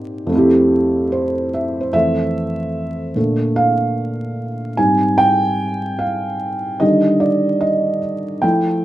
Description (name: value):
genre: hip hop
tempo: 74 BPM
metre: 4/4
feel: swing 66% on 16ths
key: F major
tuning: A4 = 440 Hz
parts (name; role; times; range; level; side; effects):
- felt-muted upright piano; solo; 0.0-8.8 s; F2 to Ab5; -15 LUFS; right 1 dB; cassette tape
room: wet small room reverb, RT60 0.5 s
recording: rough home demo mix, vinyl crackle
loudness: -15 LUFS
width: side -14 dB against mid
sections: 0.0-1.9 A section; 1.9-8.8 B section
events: felt piano solo 1.9-8.8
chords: 0.3 Fmaj9; 1.9 Fmaj7; 3.2 Bbmaj7; 4.8 Abmaj7; 6.8 Ebmaj7